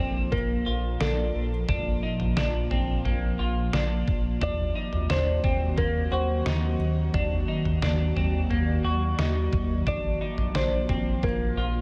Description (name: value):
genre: dream pop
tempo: 88 BPM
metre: 4/4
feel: straight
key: Bb major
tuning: A4 = 445 Hz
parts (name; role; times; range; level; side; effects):
- felt-muted upright piano; melody; 0.0-11.8 s; A4 to D5; -35 LUFS; equal; digital delay
- ethereal airy pad; sustained chords; 0.0-11.8 s; Bb2 to D5; -33 LUFS; equal; ensemble chorus, built-in reverb
- semi-hollow electric guitar; arpeggios; 0.0-11.8 s; Bb3 to Gb4; -34 LUFS; equal; subtle chorus, digital delay
- round analog bass; bass; 0.0-11.8 s; Bb1 to Eb2; -30 LUFS; equal; none
- detuned 8-bit digital drum machine; drums; 0.3-11.4 s; kick drum, snare drum, toms; -32 LUFS; equal; none
room: light reverb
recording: none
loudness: -26 LUFS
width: mono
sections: 0.0-11.8 A section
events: none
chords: 0.0 Bb; 4.4 Ebm6; 9.9 Bb